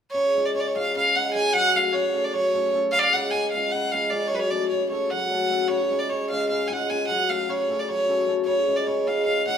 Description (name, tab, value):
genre	balkan folk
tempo	303 BPM (eighths)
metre	7/8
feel	straight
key	unclear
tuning	A4 = 440 Hz
part	bright violin	melody	0.1-9.6 s	B4 to G#5	-22 LUFS	right 1 dB	none
part	cimbalom	accompaniment	0.1-9.6 s	C#3 to A4	-26 LUFS	left 2 dB	none
room	wet stone room reverb, RT60 1.4 s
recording	band playing live in one room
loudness	-21 LUFS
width	side -8 dB against mid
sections	0.1-9.6 A section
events	none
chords	0.1 C#; 1.5 F#m; 2.9 C#; 4.3 F#m; 5.7 C#; 7.1 F#m; 8.5 C#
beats	| 0.13 0.33 0.53 0.73 0.93 1.13 1.33 | 1.52 1.72 1.92 2.12 2.32 2.52 2.72 | 2.92 3.12 3.31 3.51 3.71 3.91 4.11 | 4.31 4.50 4.70 4.90 5.10 5.30 5.50 | 5.69 5.89 6.09 6.29 6.49 6.68 6.88 | 7.08 7.28 7.47 7.67 7.87 8.07 8.26 | 8.46 8.66 8.86 9.05 9.25 9.45